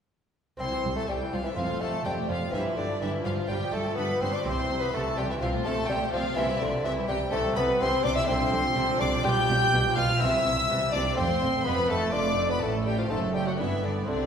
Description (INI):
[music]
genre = classical, baroque-style concerto movement with solo episodes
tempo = 125 BPM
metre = 4/4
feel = straight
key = C major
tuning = A4 = 439 Hz
[part]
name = warm bassoon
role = melody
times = 0.6-14.3 s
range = D3 to G4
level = -29 LUFS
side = equal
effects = none
[part]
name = warm chamber violin section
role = melody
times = 0.6-14.3 s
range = D5 to G6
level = -32 LUFS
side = left 1 dB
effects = none
[part]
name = rich chamber violin section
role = second line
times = 0.6-14.3 s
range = D4 to G5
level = -33 LUFS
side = left 3 dB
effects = none
[part]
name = dark chamber viola section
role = accompaniment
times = 0.6-14.3 s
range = D3 to C4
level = -36 LUFS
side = right 1 dB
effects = none
[part]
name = lute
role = accompaniment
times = 0.6-14.3 s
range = F2 to G4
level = -37 LUFS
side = equal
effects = none
[part]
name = dark chamber cello section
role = bass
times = 0.6-14.3 s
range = C2 to C3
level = -32 LUFS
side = right 2 dB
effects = none
[part]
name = rich chamber double bass section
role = bass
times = 0.6-14.3 s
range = F1 to C2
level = -34 LUFS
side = right 2 dB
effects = none
[sound]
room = wet recital hall reverb, RT60 1.4 s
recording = recorded in a church or concert hall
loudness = -24 LUFS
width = side -7 dB against mid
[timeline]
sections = 0.6-14.3 A section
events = none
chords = 0.6 C; 1.6 F; 2.5 G7; 4.5 C; 5.4 F/C; 6.4 C; 8.3 Dm7/C; 9.3 G7/B; 10.2 C; 11.2 F; 12.1 F69; 13.1 F#dim7; 13.6 G